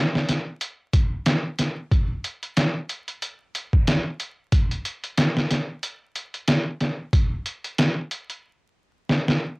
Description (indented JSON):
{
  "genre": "trip hop",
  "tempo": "92 BPM",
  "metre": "4/4",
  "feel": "swing 57% on 16ths",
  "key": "none",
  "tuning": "none",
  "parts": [
    { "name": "trip hop sampler-style drum kit", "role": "drums", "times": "0.1-9.4 s", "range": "hi-hat, kick drum, snare drum", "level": "-21 LUFS", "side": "equal", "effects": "overdrive, cassette tape" }
  ],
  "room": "moderate booth ambience, RT60 0.2 s",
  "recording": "home recording on cassette, vinyl crackle",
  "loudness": "-22 LUFS",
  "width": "side -30 dB against mid",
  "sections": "0.0-9.6 A section",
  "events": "drum fill 9.1-9.6",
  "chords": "none"
}